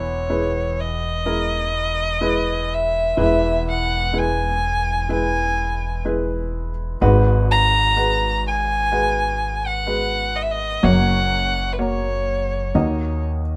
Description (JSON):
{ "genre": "acoustic folk-pop ballad", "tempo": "63 BPM", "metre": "4/4", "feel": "straight", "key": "unclear", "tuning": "A4 = 439 Hz", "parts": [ { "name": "rich violin", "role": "melody", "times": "0.0-13.2 s", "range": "B4 to A#5", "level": "-24 LUFS", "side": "equal", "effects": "none" }, { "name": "warm upright piano", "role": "accompaniment", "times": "0.0-13.6 s", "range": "F#1 to D#5", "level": "-26 LUFS", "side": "equal", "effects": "none" }, { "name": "upright bass", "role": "bass", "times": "0.0-13.6 s", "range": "E1 to D#2", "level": "-26 LUFS", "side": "equal", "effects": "none" } ], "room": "light reverb", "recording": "none", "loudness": "-20 LUFS", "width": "mono", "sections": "0.0-13.6 A section", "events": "none", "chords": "0.0 E; 7.0 G#m7; 10.8 F#; 12.7 D#m", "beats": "0.31 1.27 2.23 | 3.18 4.14 5.10 6.05 | 7.01 7.96 8.92 9.88 | 10.83 11.79 12.75" }